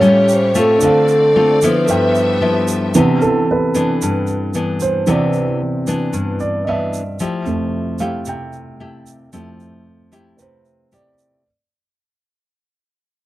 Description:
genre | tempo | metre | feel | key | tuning
bossa nova | 113 BPM | 4/4 | straight | C major | A4 = 441 Hz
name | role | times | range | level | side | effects
vibraphone with soft mallets | melody | 0.0-2.7 s | A4 to C#5 | -14 LUFS | equal | none
dark grand piano | accompaniment | 0.0-11.5 s | F2 to G5 | -19 LUFS | right 2 dB | none
nylon-string guitar | accompaniment | 0.0-11.4 s | G2 to G4 | -18 LUFS | left 2 dB | none
bright studio string section | sustained chords | 0.0-2.9 s | A3 to E5 | -25 LUFS | left 1 dB | none
tube shaker | percussion | 0.0-11.4 s | none | -30 LUFS | right 7 dB | none
room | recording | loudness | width
little or no reverb | dry, close 1970s-style studio recording | -14 LUFS | side -16 dB against mid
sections
0.0-2.9 A section; 2.9-11.4 B section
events
fade-out 2.9-11.4; grand piano solo 2.9-11.4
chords
0.0 A7alt; 0.8 Dm7; 1.9 G13; 2.9 Cmaj9; 7.2 Fmaj9

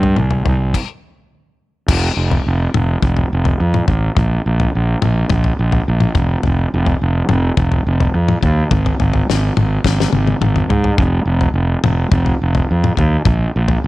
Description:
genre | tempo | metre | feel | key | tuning
psychedelic rock | 106 BPM | 4/4 | straight | unclear | A4 = 435 Hz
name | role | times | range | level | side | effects
fuzz fingered electric bass | bass | 0.0-13.9 s | F1 to Ab2 | -15 LUFS | right 1 dB | overdrive
damped 70s drum kit | drums | 0.0-13.8 s | crash cymbal, kick drum, snare drum, toms | -18 LUFS | left 2 dB | none
room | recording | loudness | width
little or no reverb | 1960s-style stereo | -13 LUFS | side -18 dB against mid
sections
0.0-1.9 A section; 1.9-13.9 B section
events
stop 0.7-1.9; drum fill 9.9-11.0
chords
none

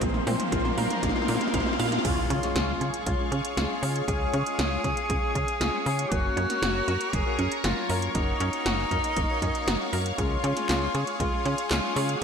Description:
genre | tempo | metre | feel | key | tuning
synthwave | 118 BPM | 4/4 | straight | unclear | A4 = 443 Hz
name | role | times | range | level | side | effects
lush unison pad | sustained chords | 0.0-12.2 s | Ab4 to Db6 | -33 LUFS | left 1 dB | chorus, phaser, sidechain pumping
wide unison pluck | arpeggios | 0.0-12.1 s | Ab3 to F5 | -35 LUFS | right 3 dB | ping-pong delay
mellow synth brass | stabs | 0.0-12.2 s | Gb3 to Db5 | -34 LUFS | left 3 dB | chorus, ping-pong delay
tight sequencer bass | bass | 0.0-12.2 s | Gb1 to Db3 | -29 LUFS | equal | none
80s electronic pad drums | drums | 0.0-12.2 s | crash cymbal, handclaps, hi-hat, snare drum, toms | -31 LUFS | equal | gated reverb on snare and toms
electronic kick drum | drums | 0.0-12.2 s | none | -31 LUFS | equal | none
riser and impact | sound effects | 0.0-4.1 s | none | -34 LUFS | right 1 dB | none
mellow tenor saxophone | melody | 2.0-12.2 s | Eb4 to Ab4 | -30 LUFS | left 1 dB | ping-pong delay
room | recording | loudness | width
wet lush hall reverb, RT60 2.0 s | bright 1980s-style digital production | -24 LUFS | side -6 dB against mid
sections
0.0-2.0 A section; 2.0-12.2 B section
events
drum fill 0.0-2.0; riser 0.0-2.0; filter sweep on analog synth pad 0.0-2.0; impact 2.0-4.1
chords
0.0 Bbsus2; 2.0 Db; 6.1 Gb; 10.2 Db

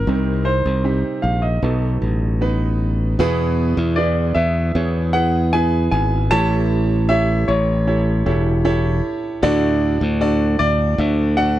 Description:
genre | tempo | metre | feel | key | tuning
pop ballad | 77 BPM | 4/4 | straight | unclear | A4 = 444 Hz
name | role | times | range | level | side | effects
clear baby grand piano | melody | 0.0-11.6 s | Bb4 to A5 | -22 LUFS | equal | none
clear concert grand piano | accompaniment | 0.0-11.6 s | A2 to E5 | -21 LUFS | right 2 dB | none
modern bright fingered electric bass | bass | 0.0-11.6 s | E1 to E2 | -18 LUFS | left 1 dB | none
room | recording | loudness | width
little or no reverb | dry, close 1970s-style studio recording | -16 LUFS | side -13 dB against mid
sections
0.0-3.2 A section; 3.2-11.6 B section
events
none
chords
0.1 Cm7; 1.6 B7; 3.2 E; 6.3 A7; 9.4 D

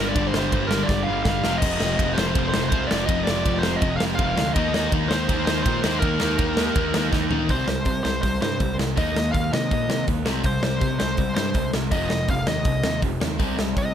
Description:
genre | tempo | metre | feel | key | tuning
punk rock | 163 BPM | 4/4 | straight | C minor | A4 = 440 Hz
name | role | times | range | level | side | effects
bluesy overdriven lead guitar | melody | 0.0-13.9 s | Bb4 to F5 | -27 LUFS | equal | distortion
crunchy overdriven guitar | riff | 0.0-13.9 s | F2 to Eb4 | -28 LUFS | left 11 dB | none
distorted electric guitar | riff | 0.0-7.5 s | F2 to Eb4 | -29 LUFS | equal | overdrive
tight distorted guitar | riff | 0.0-13.9 s | F2 to Eb4 | -30 LUFS | right 14 dB | distortion
fuzz picked electric bass | bass | 0.0-13.9 s | F1 to Eb3 | -28 LUFS | equal | overdrive
big rock drum kit | drums | 0.2-13.9 s | crash cymbal, hi-hat, kick drum, ride cymbal, snare drum, toms | -24 LUFS | equal | none
room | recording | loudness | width
little or no reverb | none | -20 LUFS | side -9 dB against mid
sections
0.0-7.5 A section; 7.5-13.9 B section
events
drum fill 0.9-1.6, 7.1-7.5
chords
0.0 Gm; 1.4 F5; 4.6 Eb5; 7.5 C5; 9.0 Eb5; 10.3 C5; 11.9 F5; 13.4 Cm

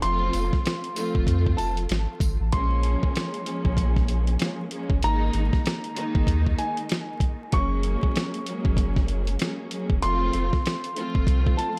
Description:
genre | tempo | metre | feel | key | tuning
hip hop, boom-bap hip-hop | 96 BPM | 4/4 | swing 59% on 16ths | Bb minor | A4 = 440 Hz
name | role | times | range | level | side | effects
warm upright piano | melody | 0.0-11.7 s | Ab5 to Db6 | -33 LUFS | equal | high-pass filter, low-pass filter, dub echo
warm studio string section | accompaniment | 0.0-11.8 s | Eb3 to F4 | -33 LUFS | equal | high-pass filter, low-pass filter, dub echo
warm sub bass | bass | 0.0-11.5 s | E1 to F2 | -27 LUFS | equal | none
dusty soul sampler-style drum kit | drums | 0.0-11.8 s | hi-hat, kick drum, rim click, snare drum | -27 LUFS | equal | none
tambourine | percussion | 0.3-2.4 s | none | -46 LUFS | equal | dub echo
room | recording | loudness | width
studio ambience | echo-heavy mix, vinyl crackle | -25 LUFS | mono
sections
0.0-2.5 A section; 2.5-11.8 A section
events
none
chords
0.0 F; 2.5 Bbm7; 5.0 Absus2; 7.5 Gbadd9; 10.0 F

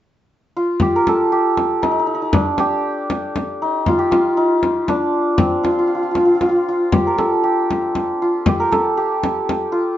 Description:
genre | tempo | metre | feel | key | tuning
Persian modal ensemble | 118 BPM | 3/4 | straight | unclear | A4 = 439 Hz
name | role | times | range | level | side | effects
santur | melody | 0.6-10.0 s | C4 to Bb4 | -16 LUFS | equal | none
frame drum | percussion | 0.8-9.6 s | none | -20 LUFS | left 1 dB | none
room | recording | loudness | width
moderate studio reverb, RT60 0.6 s | nothing above 7.8 kHz | -15 LUFS | side -12 dB against mid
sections
0.8-10.0 A section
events
none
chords
none

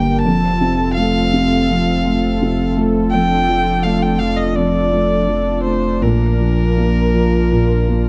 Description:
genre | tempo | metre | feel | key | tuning
neoclassical piano and strings | 83 BPM | 4/4 | rubato | unclear | A4 = 440 Hz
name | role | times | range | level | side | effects
muted violin | melody | 0.0-8.1 s | Bb4 to A5 | -22 LUFS | equal | none
dark upright piano | accompaniment | 0.0-8.1 s | F2 to Bb3 | -19 LUFS | equal | none
warm analog pad | sustained chords | 0.0-8.1 s | C4 to Bb4 | -26 LUFS | equal | chorus
punchy sub bass | bass | 0.0-8.1 s | F1 to Bb1 | -23 LUFS | equal | none
room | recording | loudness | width
moderate large studio reverb, RT60 1.4 s | dark, warm production | -16 LUFS | mono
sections
0.0-8.1 A section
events
none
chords
0.2 F; 3.1 Dm/F; 6.0 Bb

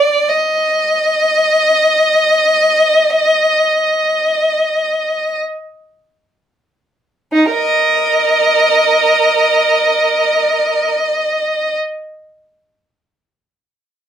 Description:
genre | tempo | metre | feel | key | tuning
classical, free, expressive piece for unaccompanied violin | free time | none | none | unclear | A4 = 440 Hz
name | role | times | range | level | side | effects
warm violin | solo | 0.0-11.8 s | Eb4 to Eb5 | -11 LUFS | equal | none
room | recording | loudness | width
light reverb | none | -11 LUFS | side -9 dB against mid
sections
0.0-7.3 A section; 7.3-14.1 B section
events
slowing down 0.0-7.3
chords
none

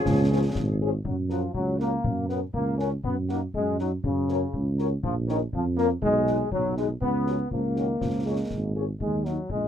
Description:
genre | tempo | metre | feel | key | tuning
military-style march for wind band | 121 BPM | 2/4 | straight | F# major | A4 = 440 Hz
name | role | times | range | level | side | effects
warm trumpet section | melody | 0.0-9.3 s | G#4 to F#5 | -41 LUFS | left 3 dB | none
flute section | second line | 0.0-0.8 s | G#4 | -34 LUFS | left 3 dB | none
warm euphonium | second line | 0.0-0.8, 7.5-8.9 s | D#3 to E#4 | -35 LUFS | right 4 dB | none
clear trombone section | sustained chords | 0.0-9.7 s | C#3 to C#4 | -28 LUFS | left 1 dB | none
mellow tuba | bass | 0.1-9.7 s | G#1 to F#2 | -27 LUFS | right 2 dB | none
concert snare drum and concert bass drum | drums | 0.1-9.7 s | none | -34 LUFS | left 2 dB | none
mellow French horn section | accompaniment | 0.3-9.3 s | E#3 to A#4 | -30 LUFS | left 7 dB | none
room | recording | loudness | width
light reverb | minimal, uncompressed stereo recording | -24 LUFS | side -9 dB against mid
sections
0.0-1.1 A section; 1.1-9.7 B section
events
none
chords
0.0 C#; 1.1 F#; 3.0 F#sus2; 4.0 F#; 5.0 A#m; 6.0 G#m/B; 7.0 F#/C#; 8.0 C#; 9.0 D#m

